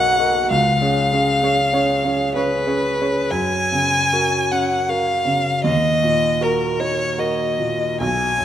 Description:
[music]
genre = classical, romantic duo for violin and grand piano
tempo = 58-81 BPM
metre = 3/4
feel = rubato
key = F# major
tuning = A4 = 440 Hz
[part]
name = rich violin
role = melody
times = 0.0-8.4 s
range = A#4 to G#5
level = -18 LUFS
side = left 1 dB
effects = none
[part]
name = warm grand piano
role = accompaniment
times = 0.0-8.4 s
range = B1 to D#5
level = -20 LUFS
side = right 1 dB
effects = none
[sound]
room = moderate scoring stage reverb, RT60 2.0 s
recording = none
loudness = -16 LUFS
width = side -10 dB against mid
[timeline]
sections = 0.0-3.3 A section; 3.3-8.4 B section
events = none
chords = 0.0 Bmaj7; 0.5 C#; 3.3 F#; 5.6 D#m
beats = | 0.51 1.45 2.35 | 3.31 4.12 4.88 | 5.64 6.41 7.18 | 8.00

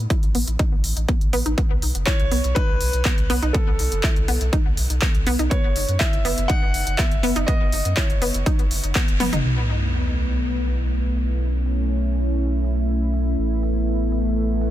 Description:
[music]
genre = progressive house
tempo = 122 BPM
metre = 4/4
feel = straight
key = B mixolydian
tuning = A4 = 441 Hz
[part]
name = saturated sub bass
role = bass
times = 0.0-14.7 s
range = E1 to F#2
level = -23 LUFS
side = equal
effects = sidechain pumping
[part]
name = analog pluck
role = arpeggios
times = 0.1-9.4 s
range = B3 to E4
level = -28 LUFS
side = equal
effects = chorus, sidechain pumping, ping-pong delay
[part]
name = deep house drum kit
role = drums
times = 0.1-14.7 s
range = crash cymbal, handclaps, hi-hat, shaker, toms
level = -28 LUFS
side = left 1 dB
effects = sidechain pumping on hats, low-pass filter on hats, low-pass filter on snare, sidechain pumping on toms, low-pass filter on toms, sidechain pumping on cymbals, low-pass filter on cymbals, sidechain pumping on perc, low-pass filter on perc
[part]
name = electronic kick drum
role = drums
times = 0.1-9.1 s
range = none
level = -20 LUFS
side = equal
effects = overdrive
[part]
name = warm concert grand piano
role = melody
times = 2.1-8.9 s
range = A4 to F#5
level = -28 LUFS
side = equal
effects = sidechain pumping, ping-pong delay
[part]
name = lush unison pad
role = sustained chords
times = 9.4-14.7 s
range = A3 to E4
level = -25 LUFS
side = equal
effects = chorus, sidechain pumping
[part]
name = sub drop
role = sound effects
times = 9.4-11.4 s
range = none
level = -28 LUFS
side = equal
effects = none
[sound]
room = digital ambience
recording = dense, heavily limited modern master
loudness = -19 LUFS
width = side -13 dB against mid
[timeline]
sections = 0.0-9.4 A section; 9.4-14.7 B section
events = band accent 9.0; drum fill 9.2; impact 9.4-11.4; filter sweep on analog synth pad 9.4-14.7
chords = 0.0 Asus2; 1.6 B7(no3); 5.5 F#5; 9.4 B7sus4; 13.4 Asus2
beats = 0.10 0.59 1.09 | 1.58 2.07 2.56 3.05 | 3.54 4.04 4.53 5.02 | 5.51 6.00 6.50 6.99 | 7.48 7.97 8.46 8.96 | 9.45 9.94 10.43 10.92 | 11.41 11.90 12.40 12.89 | 13.38 13.87 14.37

